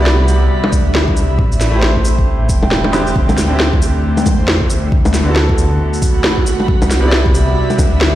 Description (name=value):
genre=future garage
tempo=136 BPM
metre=4/4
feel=swing 61% on 16ths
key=unclear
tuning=A4 = 440 Hz
part: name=bright upright piano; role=accompaniment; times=0.0-8.2 s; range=C3 to D5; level=-20 LUFS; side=right 1 dB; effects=sidechain pumping, dub echo
part: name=airy breathy pad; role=sustained chords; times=0.0-8.2 s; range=A2 to B5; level=-20 LUFS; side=equal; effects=chorus, phaser, sidechain pumping
part: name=dark detuned saw bass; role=bass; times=0.0-8.2 s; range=E1 to E2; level=-15 LUFS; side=equal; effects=tube saturation, sidechain pumping
part: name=electronic snare drum, shaker and bongos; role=drums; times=0.1-8.1 s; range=none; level=-18 LUFS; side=equal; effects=none
part: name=electronic kick drum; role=drums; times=0.7-7.9 s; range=none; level=-15 LUFS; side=equal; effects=none
room=light reverb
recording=played on a big sound system in a bare room, large studio reverb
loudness=-11 LUFS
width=side -13 dB against mid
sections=0.0-3.2 A section; 3.2-8.2 B section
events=drum fill 2.9; band accent 2.9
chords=0.0 Cmaj9; 1.4 Am7; 3.2 D9sus4; 4.9 Bm7/D; 6.7 Cmaj9